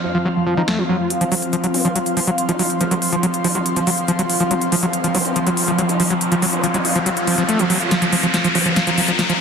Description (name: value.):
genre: psychedelic trance.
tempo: 141 BPM.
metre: 4/4.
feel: straight.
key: unclear.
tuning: A4 = 440 Hz.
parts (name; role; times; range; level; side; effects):
wide unison lead; melody; 0.0-1.1 s; F3 to Eb4; -25 LUFS; equal; phaser, tape echo.
vowel-sweep wobble bass; second line; 0.0-8.7 s; A3 to F4; -32 LUFS; right 3 dB; none.
pulsing gated texture; sustained chords; 0.0-9.4 s; F3; -24 LUFS; right 2 dB; chorus, built-in reverb.
airy breathy pad; texture; 0.0-9.4 s; C4 to C6; -23 LUFS; left 1 dB; chorus, phaser.
overdriven acid bass; riff; 0.1-9.3 s; F3 to A3; -21 LUFS; equal; distortion, auto-pan, tape echo.
big-room dance drum kit; drums; 0.7-9.4 s; hi-hat, snare drum; -22 LUFS; left 1 dB; overdrive, low-pass filter on cymbals, low-pass filter on snare, low-pass filter on hats.
riser; sound effects; 2.7-9.4 s; none; -24 LUFS; left 1 dB; none.
room: wet lush hall reverb, RT60 2.1 s.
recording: dense, heavily limited modern master.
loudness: -16 LUFS.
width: side -6 dB against mid.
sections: 0.0-1.1 A section; 1.1-9.4 B section.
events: build-up 1.1-9.4; riser 2.7-9.4; drum fill 7.9-9.4.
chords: 0.0 F5.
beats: 0.25 0.68 | 1.10 1.53 1.96 2.38 | 2.81 3.23 3.66 4.08 | 4.51 4.93 5.36 5.79 | 6.21 6.64 7.06 7.49 | 7.91 8.34 8.76 9.19.